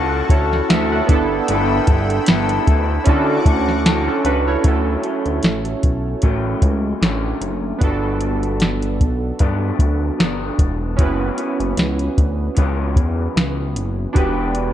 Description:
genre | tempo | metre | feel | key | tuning
indie pop, bedroom pop | 76 BPM | 4/4 | swing 55% on 16ths | D major | A4 = 440 Hz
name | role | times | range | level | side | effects
electric guitar through a small old amp | accompaniment | 0.0-14.7 s | F#2 to A4 | -24 LUFS | left 5 dB | wide subtle chorus, warbly pitch drift
warm analog keys | accompaniment | 0.0-14.7 s | B3 to F#5 | -23 LUFS | right 6 dB | chorus
lush unison pad | sustained chords | 0.0-4.6 s | A4 to E6 | -27 LUFS | equal | chorus
chorused synth bass | bass | 0.0-14.7 s | E1 to D3 | -22 LUFS | equal | none
soft vintage rhythm box | drums | 0.3-14.7 s | hi-hat, kick drum, snare drum | -16 LUFS | equal | none
room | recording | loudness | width
light reverb | dark, warm production | -16 LUFS | side -11 dB against mid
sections
0.0-4.6 A section; 4.6-14.7 B section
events
none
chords
0.0 Dmaj7; 1.1 G69; 3.1 Dmaj7; 7.8 Gmaj7; 11.0 F#7sus4; 14.2 Em7

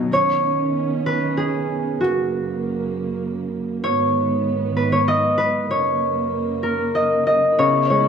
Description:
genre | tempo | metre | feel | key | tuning
children's music, lullaby | 96 BPM | 3/4 | rubato | B major | A4 = 438 Hz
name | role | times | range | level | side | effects
concert harp | melody | 0.0-8.1 s | B3 to D#5 | -19 LUFS | equal | none
felt-muted upright piano | accompaniment | 0.0-0.1, 7.6-8.1 s | B2 to G#3 | -25 LUFS | left 4 dB | none
dark studio string section | sustained chords | 0.0-8.1 s | F#2 to E4 | -24 LUFS | right 3 dB | none
room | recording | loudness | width
wet recital hall reverb, RT60 1.6 s | none | -18 LUFS | side -6 dB against mid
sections
0.1-8.1 A section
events
none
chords
0.1 Badd9; 2.0 F#; 3.8 G#m; 5.7 F#

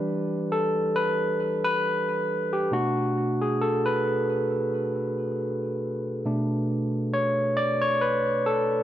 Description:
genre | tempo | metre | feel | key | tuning
R&B | 68 BPM | 4/4 | swing 55% on 16ths | unclear | A4 = 440 Hz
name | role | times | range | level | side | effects
barky tine electric piano | solo | 0.0-8.8 s | B2 to D5 | -23 LUFS | equal | tape echo
room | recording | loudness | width
wet studio reverb, RT60 0.6 s | none | -23 LUFS | side -12 dB against mid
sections
0.0-8.8 A section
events
tine electric piano solo 0.0-8.8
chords
0.0 Em7; 2.7 Bm7

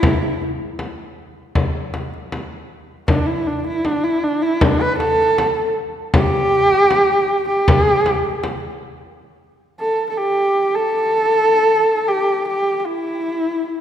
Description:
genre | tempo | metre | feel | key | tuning
mongolian traditional, Mongolian folk | 78 BPM | 4/4 | straight | unclear | A4 = 444 Hz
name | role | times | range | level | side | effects
warm horsehead fiddle | melody | 0.0-13.8 s | D4 to B4 | -16 LUFS | equal | none
frame drum | percussion | 0.0-8.6 s | none | -20 LUFS | left 1 dB | none
room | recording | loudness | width
wet concert hall reverb, RT60 2.1 s | none | -15 LUFS | side -10 dB against mid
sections
0.0-9.2 A section; 9.2-13.8 B section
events
none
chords
none

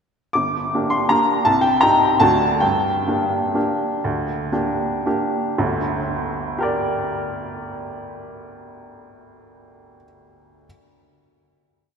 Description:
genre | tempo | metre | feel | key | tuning
classical, piano waltz | 109-173 BPM | 3/4 | rubato | G minor | A4 = 438 Hz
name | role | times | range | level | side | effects
bright upright piano | solo | 0.3-10.7 s | G1 to D6 | -18 LUFS | equal | none
room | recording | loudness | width
wet church reverb, RT60 3.8 s | none | -18 LUFS | side -6 dB against mid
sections
0.3-5.6 A section; 5.6-8.6 final chord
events
slowing down 2.0-5.6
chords
0.3 Gm; 1.5 Cm7; 2.2 D; 2.6 Gm

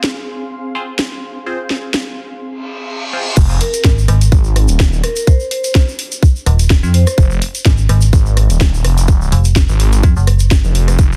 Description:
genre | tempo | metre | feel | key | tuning
bass house | 126 BPM | 4/4 | swing 55% on 16ths | F phrygian | A4 = 440 Hz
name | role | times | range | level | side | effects
garage drum kit | drums | 0.0-11.1 s | crash cymbal, hi-hat, rim click, snare drum | -23 LUFS | equal | overdrive
granular cloud pad | texture | 0.0-2.9 s | C4 to C6 | -31 LUFS | equal | built-in reverb, sidechain pumping
band-passed chord stab | stabs | 0.7-3.2 s | C4 to C5 | -29 LUFS | equal | phaser, sidechain pumping, digital delay
reverse cymbal | sound effects | 2.6-3.4 s | none | -25 LUFS | equal | none
phased detuned saw bass | bass | 3.4-11.2 s | Eb1 to Ab1 | -15 LUFS | equal | phaser, tube saturation, sidechain pumping
electronic kick drum | drums | 3.4-11.1 s | none | -12 LUFS | equal | overdrive
egg shaker | percussion | 3.4-11.2 s | none | -29 LUFS | equal | none
vibraphone with medium hard mallets | melody | 3.6-7.1 s | Bb4 to C5 | -24 LUFS | equal | digital delay
metallic FM bass | bass | 3.8-10.6 s | Eb1 to F2 | -13 LUFS | equal | overdrive, sidechain pumping
room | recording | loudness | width
little or no reverb | dense, heavily limited modern master | -13 LUFS | mono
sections
0.0-3.4 A section; 3.4-11.2 B section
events
reverse cymbal 2.6-3.4; drop 3.4-11.2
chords
0.0 Fm

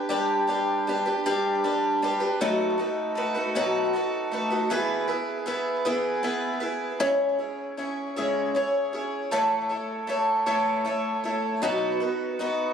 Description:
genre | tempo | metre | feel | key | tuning
rock | 52 BPM (dotted quarters) | 6/8 | straight | E major from 4.7 s | A4 = 442 Hz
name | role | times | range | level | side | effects
picked twelve-string acoustic guitar | solo | 0.0-12.7 s | A2 to C#5 | -24 LUFS | equal | tape echo
room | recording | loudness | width
light reverb | recorded on a phone in the room, studio reverb, compression | -24 LUFS | side -7 dB against mid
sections
0.1-4.7 A section; 4.7-12.7 B section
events
none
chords
0.1 G; 2.4 B7; 4.7 E; 7.0 C#m; 9.3 A; 11.6 B

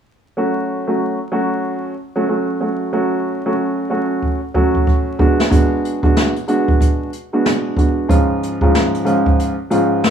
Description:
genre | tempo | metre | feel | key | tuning
hip hop, boom-bap hip-hop | 93 BPM | 4/4 | swing 62% on 16ths | F# harmonic minor | A4 = 437 Hz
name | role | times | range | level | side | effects
dark upright piano | accompaniment | 0.4-10.1 s | G#2 to F#4 | -16 LUFS | right 1 dB | cassette tape, high-pass filter, low-pass filter
jazz brush drum kit | drums | 4.2-10.1 s | hi-hat, kick drum, snare drum | -16 LUFS | right 1 dB | none
room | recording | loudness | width
light reverb, small room ambience | rough home demo mix, vinyl crackle | -15 LUFS | side -8 dB against mid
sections
0.4-10.1 A section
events
drum fill 4.2-5.5; break 9.4-10.1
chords
0.4 F#m; 5.2 G#m7b5; 8.1 C#/G#

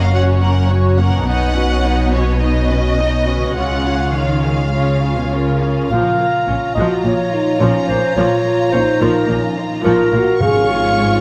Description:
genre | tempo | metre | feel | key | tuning
cinematic | 106 BPM | 4/4 | straight | unclear | A4 = 440 Hz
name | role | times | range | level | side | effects
warm symphonic violin section | melody | 0.0-11.2 s | C#5 to Db6 | -27 LUFS | equal | none
warm symphonic violin section | second line | 0.0-11.2 s | E#4 to F#5 | -28 LUFS | equal | none
warm symphonic viola section | accompaniment | 0.0-11.2 s | F3 to F#4 | -24 LUFS | equal | none
concert harp | arpeggios | 0.0-11.2 s | F#2 to C#5 | -29 LUFS | equal | none
dark symphonic double bass section | bass | 0.0-11.2 s | F#1 to C#2 | -22 LUFS | equal | none
warm symphonic cello section | bass | 0.0-11.2 s | F#2 to D#3 | -23 LUFS | equal | none
mellow clarinet | second line | 5.3-11.2 s | Bb4 to F5 | -20 LUFS | equal | none
mellow French horn section | sustained chords | 5.9-11.2 s | Db4 to Ab4 | -21 LUFS | equal | none
timpani | percussion | 10.4-11.2 s | Ab2 | -26 LUFS | equal | none
room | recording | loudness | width
moderate scoring stage reverb, RT60 1.9 s | none | -16 LUFS | mono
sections
0.0-5.9 A section; 5.9-11.2 B section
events
none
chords
0.0 F#; 1.3 Badd9; 3.6 C#; 5.9 Bbm; 10.4 Db/Ab

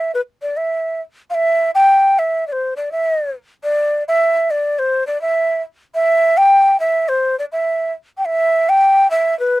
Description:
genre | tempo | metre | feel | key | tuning
andean folk | 104 BPM | 2/4 | straight | unclear | A4 = 440 Hz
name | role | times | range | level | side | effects
mellow hollow large quena | solo | 0.0-9.6 s | B4 to G5 | -14 LUFS | equal | none
room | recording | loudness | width
little or no reverb | dry, close 1970s-style studio recording | -14 LUFS | side -17 dB against mid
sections
0.0-5.9 A section; 5.9-9.6 A section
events
none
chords
none

